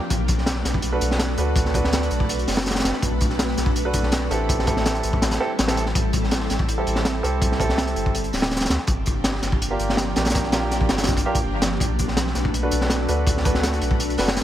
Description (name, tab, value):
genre	drum and bass, jungle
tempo	164 BPM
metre	4/4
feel	straight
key	B phrygian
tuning	A4 = 439 Hz
part	ethereal airy pad	sustained chords	0.0-14.4 s	F3 to B4	-28 LUFS	left 1 dB	ensemble chorus, built-in reverb
part	soft dub sub bass	bass	0.1-14.4 s	D1 to D2	-26 LUFS	equal	tube saturation
part	crunchy breakbeat drum kit	drums	0.1-14.4 s	hi-hat, kick drum, snare drum	-22 LUFS	equal	none
part	dark baby grand piano	stabs	0.9-14.3 s	Bb3 to B4	-27 LUFS	right 3 dB	vintage 12-bit sampler grit, dub echo
room	studio reverb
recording	none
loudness	-19 LUFS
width	side -12 dB against mid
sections	0.0-11.8 A section; 11.8-14.4 A section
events	drop 0.0-11.8, 11.8-14.4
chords	0.1 Bm7; 4.5 Am7; 8.1 Gm7; 11.8 Bm7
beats	| 0.10 0.46 0.83 1.20 | 1.56 1.93 2.29 2.66 | 3.02 3.39 3.76 4.12 | 4.49 4.86 5.22 5.59 | 5.95 6.32 6.68 7.05 | 7.42 7.78 8.15 8.51 | 8.88 9.24 9.61 9.98 | 10.34 10.71 11.07 11.44 | 11.81 12.17 12.54 12.90 | 13.27 13.63 14.00 14.37